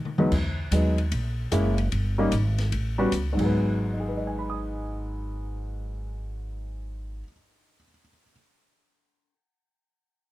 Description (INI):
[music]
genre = jazz piano trio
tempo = 150 BPM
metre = 4/4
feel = swing 66% on 8ths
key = G# minor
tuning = A4 = 440 Hz
[part]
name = upright bass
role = bass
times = 0.0-7.2 s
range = F#1 to D#3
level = -28 LUFS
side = equal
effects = none
[part]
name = open jazz drum kit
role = drums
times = 0.1-3.5 s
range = crash cymbal, hi-hat, kick drum, ride cymbal, snare drum, toms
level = -34 LUFS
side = left 2 dB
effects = none
[part]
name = dark baby grand piano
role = melody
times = 0.2-8.3 s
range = E2 to D#6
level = -26 LUFS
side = equal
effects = none
[sound]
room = little or no reverb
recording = close, detailed microphones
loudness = -24 LUFS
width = side -16 dB against mid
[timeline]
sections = 0.3-3.5 A section; 3.5-6.7 B section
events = drum fill 0.0-0.3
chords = 0.3 Emaj7; 1.1 A#m7b5; 1.9 N.C.; 2.7 A7; 3.3 G#m7